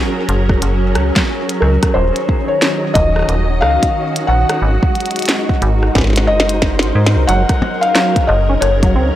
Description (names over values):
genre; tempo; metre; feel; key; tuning
IDM; 90 BPM; 4/4; swing 62% on 16ths; Gb lydian; A4 = 440 Hz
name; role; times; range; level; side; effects
soft string machine; sustained chords; 0.0-9.2 s; Eb3 to Ab5; -20 LUFS; equal; ensemble chorus, vintage 12-bit sampler grit
pulsing gated texture; texture; 0.0-7.3 s; Gb3 to Gb4; -28 LUFS; equal; chorus, built-in reverb
metallic FM bass; bass; 0.3-9.1 s; Eb1 to Ab2; -15 LUFS; equal; tube saturation
glitchy drum kit; drums; 0.3-8.9 s; hi-hat, percussion blips, rim click, snare drum; -19 LUFS; equal; none
electronic kick drum; drums; 0.5-8.9 s; none; -16 LUFS; equal; none
felt-muted upright piano; melody; 1.6-9.2 s; Bb4 to Gb5; -18 LUFS; left 1 dB; analog delay
deep acid bass; arpeggios; 7.3-9.1 s; Gb3 to Db4; -20 LUFS; right 2 dB; tape echo
room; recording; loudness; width
digital ambience; dry, gritty hardware recording; -12 LUFS; side -13 dB against mid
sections
0.0-7.3 A section; 7.3-9.2 B section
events
drum fill 6.0-7.3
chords
0.0 Gbadd9; 2.0 Ebm7; 4.6 Ab7; 7.3 Gbadd9